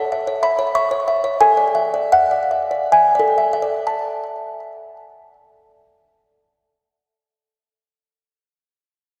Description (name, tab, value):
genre	classical, lullaby for music box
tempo	61-100 BPM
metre	3/4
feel	rubato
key	A major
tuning	A4 = 442 Hz
part	music box	solo	0.0-7.2 s	A4 to C#6	-18 LUFS	equal	delay
room	wet lush hall reverb, RT60 2.6 s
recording	dreamy mix soaked in reverb, cassette tape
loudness	-17 LUFS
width	mono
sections	0.0-3.9 A section; 3.9-9.2 B section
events	slowing down 0.0-3.9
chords	0.0 A; 1.4 E7/A; 3.9 A5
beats	0.13 0.75 | 1.41 2.13 2.94 | 3.88 4.84 5.82 | 6.79